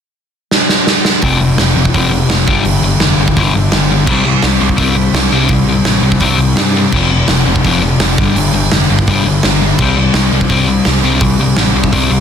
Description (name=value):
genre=punk rock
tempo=168 BPM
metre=4/4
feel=straight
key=unclear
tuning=A4 = 440 Hz
part: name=big rock drum kit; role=drums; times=0.5-12.0 s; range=crash cymbal, hi-hat, kick drum, snare drum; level=-13 LUFS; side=right 2 dB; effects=soft clipping on kick
part: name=sludgy distorted guitar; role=riff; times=1.2-12.2 s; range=F2 to C4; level=-13 LUFS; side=left 4 dB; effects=overdrive
part: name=growling picked electric bass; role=bass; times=1.2-12.2 s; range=F1 to G2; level=-17 LUFS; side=right 2 dB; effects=overdrive
room=little or no reverb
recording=dense, heavily limited modern master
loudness=-9 LUFS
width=side -8 dB against mid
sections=0.0-1.2 A section; 1.2-12.2 B section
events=drum fill 0.5-1.2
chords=0.0 N.C.; 1.2 F5; 2.5 G5; 4.1 C5; 6.9 F5; 8.2 G5; 9.8 C5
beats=0.16 0.52 0.87 | 1.23 1.58 1.94 2.29 | 2.65 3.00 3.36 3.72 | 4.07 4.43 4.78 5.14 | 5.50 5.85 6.21 6.57 | 6.92 7.28 7.64 7.99 | 8.35 8.71 9.06 9.42 | 9.78 10.14 10.49 10.85 | 11.21 11.57 11.93